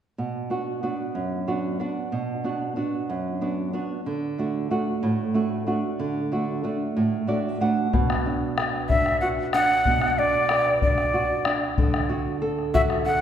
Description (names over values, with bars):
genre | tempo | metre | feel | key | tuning
andean folk, Andean ensemble | 62 BPM (dotted quarters) | 6/8 | straight | B minor | A4 = 439 Hz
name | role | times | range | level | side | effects
nylon-string guitar | accompaniment | 0.2-13.2 s | F#2 to F#5 | -25 LUFS | right 2 dB | none
bombo | percussion | 7.9-13.1 s | none | -25 LUFS | left 3 dB | none
breathy quena | melody | 8.9-13.2 s | D5 to F#5 | -22 LUFS | equal | none
room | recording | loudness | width
wet scoring stage reverb, RT60 1.8 s | heard from further back in the room | -22 LUFS | side -9 dB against mid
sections
0.2-7.9 A section; 7.9-13.2 B section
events
nylon-string guitar fill 7.0-7.9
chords
0.2 Bm; 4.1 D; 7.9 Bm; 11.8 D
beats
| 0.18 1.15 | 2.12 3.09 | 4.06 5.03 | 6.00 6.96 | 7.93 8.89 | 9.85 10.82 | 11.78 12.74